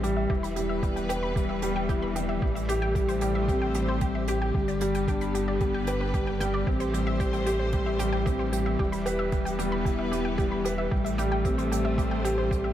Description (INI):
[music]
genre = piano and strings electronica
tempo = 113 BPM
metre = 4/4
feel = straight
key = A minor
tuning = A4 = 440 Hz
[part]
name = muted studio string section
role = sustained chords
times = 0.0-12.7 s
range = D3 to C5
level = -33 LUFS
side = equal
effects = none
[part]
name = analog pluck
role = arpeggios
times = 0.0-12.7 s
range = G4 to B5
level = -34 LUFS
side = equal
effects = chorus, sidechain pumping, digital delay
[part]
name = felt-muted upright piano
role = riff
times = 0.0-12.7 s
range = G3 to B4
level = -29 LUFS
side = left 2 dB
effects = digital delay
[part]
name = warm sub bass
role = bass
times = 0.0-12.7 s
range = E1 to A1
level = -31 LUFS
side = right 1 dB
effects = sidechain pumping
[part]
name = hi-hat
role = drums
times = 0.0-12.6 s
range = none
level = -42 LUFS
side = right 7 dB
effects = none
[part]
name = electronic kick drum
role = drums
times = 0.3-12.6 s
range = none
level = -28 LUFS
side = right 1 dB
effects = none
[sound]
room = moderate recital hall reverb, RT60 1.6 s, studio ambience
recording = none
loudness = -24 LUFS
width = side -11 dB against mid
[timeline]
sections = 0.0-12.7 A section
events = none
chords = 0.3 Em; 2.4 Am7; 4.5 G; 6.7 Am7; 8.8 Em; 10.9 Am7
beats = | 0.30 0.83 1.36 1.89 | 2.42 2.95 3.48 4.02 | 4.55 5.08 5.61 6.14 | 6.67 7.20 7.73 8.26 | 8.79 9.32 9.86 10.39 | 10.92 11.45 11.98 12.51